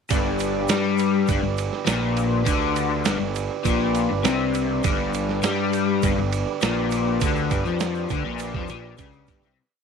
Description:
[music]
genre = psychedelic rock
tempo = 101 BPM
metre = 4/4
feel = straight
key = G mixolydian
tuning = A4 = 440 Hz
[part]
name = percussive tonewheel organ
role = sustained chords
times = 0.1-9.5 s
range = D4 to D5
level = -28 LUFS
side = right 11 dB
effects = slow rotary speaker
[part]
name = crunchy overdriven guitar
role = riff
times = 0.1-9.6 s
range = G2 to G3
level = -23 LUFS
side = left 9 dB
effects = rotary speaker
[part]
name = fuzz fingered electric bass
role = bass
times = 0.1-9.6 s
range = G1 to G2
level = -29 LUFS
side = right 2 dB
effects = overdrive
[part]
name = lo-fi sampler-style drum kit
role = drums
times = 0.1-9.4 s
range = kick drum, ride cymbal, snare drum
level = -27 LUFS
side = right 5 dB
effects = none
[part]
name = tube shaker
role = percussion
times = 0.1-9.5 s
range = none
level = -40 LUFS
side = right 20 dB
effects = none
[sound]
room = moderate spring reverb, RT60 2.1 s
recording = 1960s-style stereo with parts hard left and right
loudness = -20 LUFS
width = side -6 dB against mid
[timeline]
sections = 0.1-9.6 riff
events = fade-out 7.2-9.6; break 8.4-9.6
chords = 0.1 G

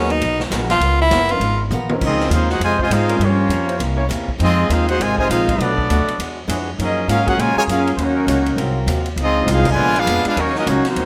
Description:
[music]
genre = jazz, big band swing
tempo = 201 BPM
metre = 4/4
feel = swing 61% on 8ths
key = Db major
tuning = A4 = 439 Hz
[part]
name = edgy tenor saxophone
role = melody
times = 0.0-1.6 s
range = C#4 to E#4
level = -20 LUFS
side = equal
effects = none
[part]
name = clear concert grand piano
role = accompaniment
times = 0.0-2.3 s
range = E#3 to A#4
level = -28 LUFS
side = equal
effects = none
[part]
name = picked swing-style acoustic guitar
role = accompaniment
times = 0.0-11.1 s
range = F2 to A#4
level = -30 LUFS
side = equal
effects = none
[part]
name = upright bass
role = bass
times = 0.0-11.1 s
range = F#1 to Bb2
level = -23 LUFS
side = equal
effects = none
[part]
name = swinging big-band drum kit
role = drums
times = 0.1-11.1 s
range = crash cymbal, hi-hat, kick drum, ride cymbal, snare drum, toms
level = -29 LUFS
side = equal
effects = none
[part]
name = dark trombone section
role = second line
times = 2.0-11.1 s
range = C3 to Gb4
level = -24 LUFS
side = equal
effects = none
[part]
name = clear trumpet section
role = melody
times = 2.1-11.1 s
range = Bb3 to Ab5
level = -22 LUFS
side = equal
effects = none
[part]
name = mellow trombone section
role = sustained chords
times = 2.8-10.5 s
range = F3 to Db5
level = -30 LUFS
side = equal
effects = none
[sound]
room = moderate echo chamber reverb, RT60 1.4 s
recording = none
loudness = -18 LUFS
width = mono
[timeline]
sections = 0.0-2.0 A section; 2.0-11.1 B section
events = tenor saxophone solo 0.0-2.0; drum fill 1.7; band accent 9.6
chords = 0.0 G#m9; 0.8 C#13; 2.0 Dbmaj9; 3.2 Gm7b5; 3.8 C7b9; 4.4 Fm7; 5.6 Cbm7; 6.2 E9; 6.8 Gbmaj9; 8.0 Ebm7; 8.6 Ab13; 9.2 Dbmaj9; 9.8 Bb7b9; 10.4 Ebm7

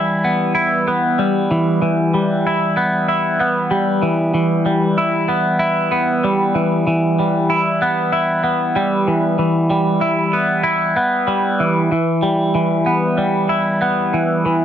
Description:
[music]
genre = rock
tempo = 95 BPM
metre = 4/4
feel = straight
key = E minor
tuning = A4 = 440 Hz
[part]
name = twangy electric guitar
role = solo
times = 0.0-14.6 s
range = E3 to E4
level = -15 LUFS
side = equal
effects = phaser
[sound]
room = little or no reverb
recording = dry, close 1970s-style studio recording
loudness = -15 LUFS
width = side -10 dB against mid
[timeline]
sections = 0.0-11.9 A section; 11.9-14.6 B section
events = none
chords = 0.0 Em

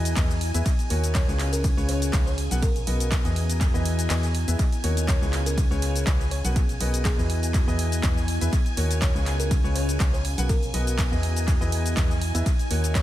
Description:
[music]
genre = piano house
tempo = 122 BPM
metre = 4/4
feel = swing 54% on 16ths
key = unclear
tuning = A4 = 440 Hz
[part]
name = string machine, violins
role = sustained chords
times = 0.0-13.0 s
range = Ab5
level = -37 LUFS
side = equal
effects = ensemble chorus, sidechain pumping
[part]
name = warm upright piano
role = riff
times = 0.0-13.0 s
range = Db3 to F#5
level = -32 LUFS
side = left 1 dB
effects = sidechain pumping, dub echo
[part]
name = organ-like FM bass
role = bass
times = 0.0-13.0 s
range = B1 to E2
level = -25 LUFS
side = equal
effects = sidechain pumping
[part]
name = warbly tape-like pad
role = texture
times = 0.0-13.0 s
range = B3 to Cb6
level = -34 LUFS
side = equal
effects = chorus, built-in reverb, sidechain pumping
[part]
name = house drum kit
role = drums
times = 0.1-13.0 s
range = handclaps, hi-hat, ride cymbal, shaker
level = -31 LUFS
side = equal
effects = overdrive, dub echo
[part]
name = electronic kick drum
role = drums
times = 0.2-13.0 s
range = none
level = -24 LUFS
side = equal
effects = none
[part]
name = bell-like FM electric piano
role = melody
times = 1.1-13.0 s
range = Ab4 to Db5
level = -38 LUFS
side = right 1 dB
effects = chorus, cassette tape, dub echo
[sound]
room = little or no reverb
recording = echo-heavy mix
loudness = -21 LUFS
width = side -14 dB against mid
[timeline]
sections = 0.0-13.0 A section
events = kick drops out 4.1-4.6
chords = 0.0 Emaj7; 0.7 Ebm7; 1.4 Db7; 2.4 Bmaj7; 3.4 Emaj7; 4.6 Ebm7; 5.3 Db7; 6.3 Bmaj7; 7.3 Emaj7; 8.5 Ebm7; 9.3 Db7; 10.2 Bmaj7; 11.2 Emaj7; 12.5 Ebm7

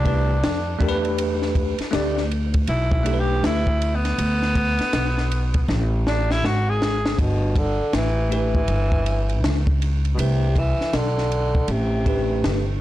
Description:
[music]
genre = hip hop, jazz-hop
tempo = 80 BPM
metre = 4/4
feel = swing 63% on 16ths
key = unclear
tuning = A4 = 441 Hz
[part]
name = breathy tenor saxophone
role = melody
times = 0.0-12.8 s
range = B2 to G#4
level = -25 LUFS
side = equal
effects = none
[part]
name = bell-like tine electric piano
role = accompaniment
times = 0.0-3.7, 8.3-12.6 s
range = A3 to D5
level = -26 LUFS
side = equal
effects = medium stereo tremolo
[part]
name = upright bass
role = bass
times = 0.0-12.8 s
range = G1 to F2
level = -22 LUFS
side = equal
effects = tube saturation
[part]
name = compact cocktail drum kit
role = drums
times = 0.1-12.7 s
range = hi-hat, kick drum, ride cymbal, snare drum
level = -25 LUFS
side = equal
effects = none
[sound]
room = studio reverb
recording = blown-out, overdriven recording, overdrive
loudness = -19 LUFS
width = side -14 dB against mid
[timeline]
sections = 0.0-7.2 A section; 7.2-12.8 B section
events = tenor saxophone solo 0.0-7.2; drum fill 5.7-7.2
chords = 0.0 C5; 0.8 Em7; 4.2 D5; 6.4 F#sus2/G#; 7.2 Gsus2; 10.2 C5

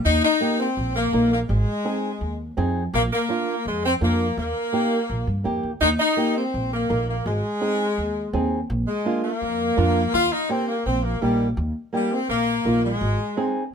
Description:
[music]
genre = latin, cumbia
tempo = 167 BPM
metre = 4/4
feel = straight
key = Eb major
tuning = A4 = 441 Hz
[part]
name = clear saxophone section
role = melody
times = 0.0-13.5 s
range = G3 to F4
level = -23 LUFS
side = left 2 dB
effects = none
[part]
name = upright bass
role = bass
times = 0.1-13.2 s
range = Ab1 to G2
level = -24 LUFS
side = right 1 dB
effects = none
[part]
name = flamenco guitar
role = accompaniment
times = 0.4-13.6 s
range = Bb3 to Bb4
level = -25 LUFS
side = right 2 dB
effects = none
[sound]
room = light reverb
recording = minimal, uncompressed stereo recording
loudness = -20 LUFS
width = side -7 dB against mid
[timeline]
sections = 0.0-13.7 A section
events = none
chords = 0.0 Eb; 1.5 Ab; 2.9 Bb; 4.4 Eb; 7.2 Ab; 8.7 Bb7; 10.1 Eb; 13.0 Ab

